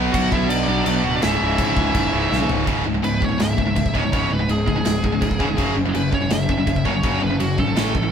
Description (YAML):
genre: heavy metal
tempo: 165 BPM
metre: 4/4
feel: straight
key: C# phrygian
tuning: A4 = 443 Hz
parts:
  - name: tight distorted guitar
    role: riff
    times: 0.0-8.1 s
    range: C#2 to B3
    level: -25 LUFS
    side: left 7 dB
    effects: distortion
  - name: tight distorted guitar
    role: riff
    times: 0.0-8.1 s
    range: C#2 to B3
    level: -23 LUFS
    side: right 5 dB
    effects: distortion
  - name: tight distorted guitar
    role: riff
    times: 0.0-2.7 s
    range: C#2 to B3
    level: -26 LUFS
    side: equal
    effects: distortion
  - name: fuzz picked electric bass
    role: bass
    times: 0.0-8.1 s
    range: C#1 to C#2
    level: -24 LUFS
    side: equal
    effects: overdrive
  - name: high-gain lead guitar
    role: melody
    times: 0.1-8.1 s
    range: F#4 to F#5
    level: -26 LUFS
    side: right 1 dB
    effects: distortion, digital delay
  - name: high-gain lead guitar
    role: second line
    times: 0.1-2.5 s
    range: D4 to F#4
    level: -28 LUFS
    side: right 1 dB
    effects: distortion
  - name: big rock drum kit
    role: drums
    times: 0.1-8.0 s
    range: china cymbal, kick drum, snare drum, toms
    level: -24 LUFS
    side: equal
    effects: none
room: moderate stone room reverb, RT60 1.3 s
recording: band playing live in one room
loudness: -17 LUFS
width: side -8 dB against mid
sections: 0.0-2.7 A section; 2.7-8.1 B section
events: half time 0.0-2.7; drum fill 2.3-2.7; lead electric guitar solo 2.7-8.1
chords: 0.0 Bm; 1.2 C#m; 2.7 C#5; 5.6 F#5; 7.8 A5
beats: 0.14 0.50 0.86 | 1.22 1.58 1.94 2.31 | 2.67 3.03 3.39 3.76 | 4.12 4.49 4.85 5.21 | 5.58 5.94 6.30 6.67 | 7.03 7.39 7.76